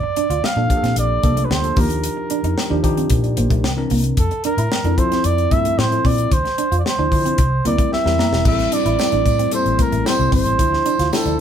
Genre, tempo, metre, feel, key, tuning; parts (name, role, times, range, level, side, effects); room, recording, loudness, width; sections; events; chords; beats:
polished 1980s jazz-funk pop; 112 BPM; 4/4; straight; A4 = 442 Hz
warm flugelhorn; melody; 0.0-11.4 s; A4 to F5; -21 LUFS; right 4 dB
semi-hollow electric guitar; riff; 0.0-11.4 s; A3 to F4; -25 LUFS; right 3 dB
tight funk drum kit; drums; 0.2-11.4 s; crash cymbal, hi-hat, kick drum, snare drum; -21 LUFS; left 1 dB
vintage muted fingered electric bass; bass; 0.3-11.4 s; E1 to F3; -21 LUFS; equal
mellow tine electric piano; accompaniment; 0.6-11.4 s; E3 to Bb5; -23 LUFS; left 4 dB
tambourine; percussion; 8.7-11.2 s; -33 LUFS; right 3 dB
moderate small room ambience, RT60 0.5 s; band playing live in one room; -15 LUFS; side -9 dB against mid
0.0-8.5 A section; 8.5-11.4 B section
tine electric piano fill 7.7-8.5; drum fill 7.9-8.5
0.0 Bbmaj7; 1.8 Ebmaj9; 3.6 C9; 4.2 Fmaj7; 6.3 Dm9; 7.4 C7; 8.5 Am7; 10.6 Dm9
0.43 0.97 1.50 | 2.04 2.57 3.10 3.64 | 4.17 4.71 5.24 5.78 | 6.31 6.85 7.38 7.92 | 8.45 8.99 9.52 10.06 | 10.59 11.12